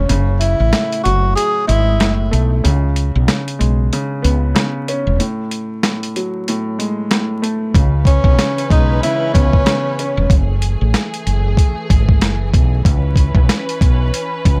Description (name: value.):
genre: hip hop, boom-bap hip-hop.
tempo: 94 BPM.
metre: 4/4.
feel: swing 58% on 16ths.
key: C# minor.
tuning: A4 = 440 Hz.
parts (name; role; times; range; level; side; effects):
breathy tenor saxophone; melody; 0.0-2.2, 8.1-10.3 s; C#4 to G#4; -21 LUFS; equal; high-pass filter, low-pass filter, digital delay, plate reverb.
dark grand piano; accompaniment; 0.0-10.3 s; A2 to C#4; -24 LUFS; equal; high-pass filter, low-pass filter.
woody fretless electric bass; bass; 0.0-14.6 s; E1 to C#2; -18 LUFS; equal; subtle chorus.
boom bap sampler-style drum kit; drums; 0.1-14.6 s; hi-hat, kick drum, snare drum; -17 LUFS; equal; none.
warm studio string section; sustained chords; 7.7-14.6 s; E3 to B4; -28 LUFS; equal; high-pass filter, low-pass filter.
room: light reverb.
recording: vinyl crackle.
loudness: -16 LUFS.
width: mono.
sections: 0.0-14.6 A section.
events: break 0.0-7.7.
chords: 0.1 F#m9; 2.6 C#7(no3); 5.2 F#madd9; 7.7 C#m7; 10.3 F#m9; 12.9 C#m7.